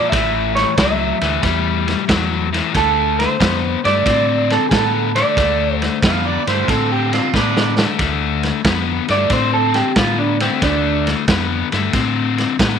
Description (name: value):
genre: electric blues shuffle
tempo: 91 BPM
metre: 4/4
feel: swing 67% on 8ths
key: D minor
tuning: A4 = 439 Hz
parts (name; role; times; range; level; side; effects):
- electric guitar through a small old amp; melody; 0.0-11.1 s; C4 to E5; -18 LUFS; right 3 dB; harmonic tremolo, slapback echo
- biting overdriven guitar; riff; 0.0-12.8 s; A2 to C4; -19 LUFS; left 11 dB; none
- deep dub fingered electric bass; bass; 0.1-12.8 s; A1 to A2; -22 LUFS; right 1 dB; none
- vintage drum kit; drums; 0.1-12.8 s; kick drum, ride cymbal, snare drum; -20 LUFS; right 1 dB; none
- overdriven harmonica; second line; 6.1-7.9 s; C4 to F5; -22 LUFS; right 12 dB; none
room: light reverb, studio reverb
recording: 1960s-style stereo with parts hard left and right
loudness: -14 LUFS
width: side -7 dB against mid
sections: 0.0-8.0 A section; 8.0-12.8 B section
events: drum fill 7.3-8.0; clean electric guitar solo 8.0-12.8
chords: 0.1 A7; 2.7 Dm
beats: | 0.12 0.77 1.43 2.08 | 2.74 3.40 4.05 4.71 | 5.37 6.02 6.68 7.34 | 7.99 8.65 9.31 9.96 | 10.62 11.28 11.94 12.59